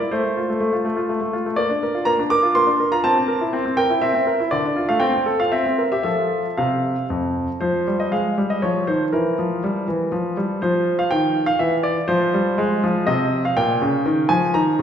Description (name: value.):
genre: classical-period piano sonatina.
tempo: 122 BPM.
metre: 3/4.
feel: rubato.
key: F major, F minor from 7.6 s.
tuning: A4 = 441 Hz.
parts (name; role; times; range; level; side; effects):
bright grand piano; solo; 0.0-14.8 s; F2 to D6; -18 LUFS; equal; none.
room: wet recital hall reverb, RT60 1.8 s.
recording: heard from further back in the room.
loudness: -18 LUFS.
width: side -8 dB against mid.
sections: 0.0-7.6 A section; 7.6-14.8 B section.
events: none.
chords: 0.1 F/A; 1.6 Bb; 3.0 C7; 4.5 Dm; 5.0 F/C; 5.5 C7; 6.0 F; 7.6 Fm; 8.6 F5; 9.1 Edim; 10.6 Eb69; 11.6 N.C.; 12.1 Fm; 13.6 Bbm.